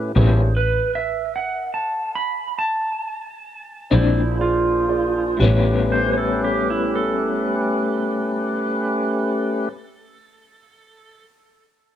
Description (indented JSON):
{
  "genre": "slow blues",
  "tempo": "38-53 BPM (dotted quarters)",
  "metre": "12/8",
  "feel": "straight",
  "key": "A mixolydian",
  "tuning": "A4 = 440 Hz",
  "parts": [
    { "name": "dark baby grand piano", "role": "accompaniment", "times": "0.0-9.7 s", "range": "E4 to D5", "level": "-30 LUFS", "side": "right 3 dB", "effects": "plate reverb" },
    { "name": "tonewheel organ", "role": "sustained chords", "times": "0.0-9.7 s", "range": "A3 to C5", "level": "-23 LUFS", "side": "equal", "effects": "slow rotary speaker, overdrive" },
    { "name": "clear double bass", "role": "bass", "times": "0.0-9.7 s", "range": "A1 to A2", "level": "-20 LUFS", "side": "equal", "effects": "none" },
    { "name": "electric guitar through a small old amp", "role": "accompaniment", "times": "0.2-9.8 s", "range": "A2 to D4", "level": "-24 LUFS", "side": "left 6 dB", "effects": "tremolo, plate reverb" },
    { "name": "clean lap steel guitar", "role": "second line", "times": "0.6-11.2 s", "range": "E4 to B5", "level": "-23 LUFS", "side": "right 3 dB", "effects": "analog delay" }
  ],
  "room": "light reverb",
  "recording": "dark, warm production",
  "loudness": "-18 LUFS",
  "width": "side -10 dB against mid",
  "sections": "0.0-5.4 A section; 5.4-11.7 B section",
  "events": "slowing down 0.0-5.4; electric slide guitar solo 0.0-5.4",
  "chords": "0.0 A9; 3.9 Bb9; 5.4 A9"
}